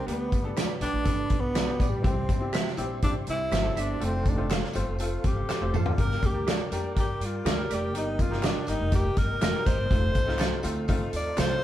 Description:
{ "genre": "uptempo 1960s-style soul", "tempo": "122 BPM", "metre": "4/4", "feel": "straight", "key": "unclear", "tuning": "A4 = 440 Hz", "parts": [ { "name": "breathy tenor saxophone", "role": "melody", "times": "0.0-11.6 s", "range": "G3 to D5", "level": "-31 LUFS", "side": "equal", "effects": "analog delay" }, { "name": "percussive tonewheel organ", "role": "sustained chords", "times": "0.0-11.6 s", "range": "G4 to Eb6", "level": "-39 LUFS", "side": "equal", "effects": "slow rotary speaker, chorus vibrato" }, { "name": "bright upright piano", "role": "accompaniment", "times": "0.1-11.6 s", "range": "G3 to C5", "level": "-36 LUFS", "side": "left 2 dB", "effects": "none" }, { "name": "upright bass", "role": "bass", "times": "0.1-11.6 s", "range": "F1 to G2", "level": "-32 LUFS", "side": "equal", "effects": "none" }, { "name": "natural country drum kit", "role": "drums", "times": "0.1-11.5 s", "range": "hi-hat, kick drum, snare drum, toms", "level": "-27 LUFS", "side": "equal", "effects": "none" }, { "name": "tambourine and handclaps", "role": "percussion", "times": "0.1-11.5 s", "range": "none", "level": "-42 LUFS", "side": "left 3 dB", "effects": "none" }, { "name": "semi-hollow electric guitar", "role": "stabs", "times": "0.6-11.5 s", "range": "F4 to F5", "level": "-36 LUFS", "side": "right 6 dB", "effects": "none" } ], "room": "moderate studio reverb, RT60 0.8 s", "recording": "band playing live in one room, cassette tape", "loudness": "-24 LUFS", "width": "side -12 dB against mid", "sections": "0.0-11.6 A section", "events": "tenor saxophone solo 0.0-11.6; drum fill 5.5-6.0", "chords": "0.1 G; 2.0 C; 4.0 F; 6.0 Gm; 7.9 Eb; 9.9 F7", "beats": "| 0.08 0.57 1.06 1.56 | 2.05 2.54 3.03 3.52 | 4.01 4.51 5.00 5.49 | 5.98 6.47 6.96 7.45 | 7.94 8.44 8.93 9.42 | 9.91 10.40 10.89 11.38" }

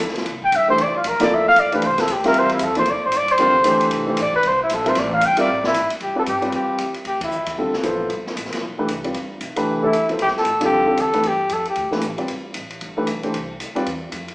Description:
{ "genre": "modal jazz", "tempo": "229 BPM", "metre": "4/4", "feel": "swing 61% on 8ths", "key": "G mixolydian from 6.0 s", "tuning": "A4 = 440 Hz", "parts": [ { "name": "upright bass", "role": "bass", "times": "0.0-14.3 s", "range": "F1 to A2", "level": "-35 LUFS", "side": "equal", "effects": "none" }, { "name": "open jazz drum kit", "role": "drums", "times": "0.0-14.3 s", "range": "hi-hat, kick drum, ride cymbal, snare drum", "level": "-28 LUFS", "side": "equal", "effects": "none" }, { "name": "dark trumpet", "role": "melody", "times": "0.4-7.6, 9.8-11.9 s", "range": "E4 to G5", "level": "-17 LUFS", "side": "equal", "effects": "none" }, { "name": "warm concert grand piano", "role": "accompaniment", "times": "0.7-13.9 s", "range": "D3 to E5", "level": "-22 LUFS", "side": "equal", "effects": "none" } ], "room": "wet large studio reverb, RT60 1.1 s", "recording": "band playing live in one room, small speaker sound", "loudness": "-17 LUFS", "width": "side -23 dB against mid", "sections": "0.0-6.0 A section; 6.0-14.3 B section", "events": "trumpet solo 0.0-6.0; band accent 7.2", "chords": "0.0 C9sus4; 1.8 Am; 6.0 G13; 12.3 Cadd9/G", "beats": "0.00 0.26 0.52 | 0.78 1.05 1.31 1.57 | 1.83 2.09 2.35 2.61 | 2.87 3.13 3.40 3.66 | 3.92 4.18 4.44 4.70 | 4.96 5.22 5.48 5.74 | 6.00 6.27 6.53 6.79 | 7.05 7.31 7.58 7.84 | 8.10 8.36 8.62 8.88 | 9.15 9.41 9.67 9.93 | 10.19 10.46 10.72 10.98 | 11.24 11.50 11.77 12.03 | 12.29 12.55 12.81 13.07 | 13.34 13.60 13.86 14.12" }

